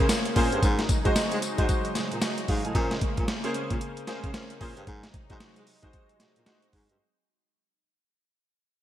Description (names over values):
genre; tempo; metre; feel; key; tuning
R&B, new jack swing; 113 BPM; 4/4; swing 60% on 16ths; unclear; A4 = 440 Hz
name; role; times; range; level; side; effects
clear concert grand piano; accompaniment; 0.0-7.0 s; Ab3 to Ab5; -31 LUFS; equal; analog chorus
phased analog pad; sustained chords; 0.0-7.0 s; C3 to Eb4; -36 LUFS; equal; phaser, chorus
breathy baritone saxophone; bass; 0.0-7.0 s; G2 to Bb3; -32 LUFS; equal; none
dusty soul sampler-style drum kit; drums; 0.1-7.0 s; hi-hat, kick drum, snare drum, tambourine; -27 LUFS; equal; overdrive, gated reverb
room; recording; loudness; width
moderate lush hall reverb, RT60 1.7 s; bright 1980s-style digital production; -24 LUFS; side -12 dB against mid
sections
0.0-7.0 A section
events
fade-out 0.0-7.0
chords
0.0 Bbm9; 0.6 Ab7; 2.7 Bbm9; 4.9 Ab7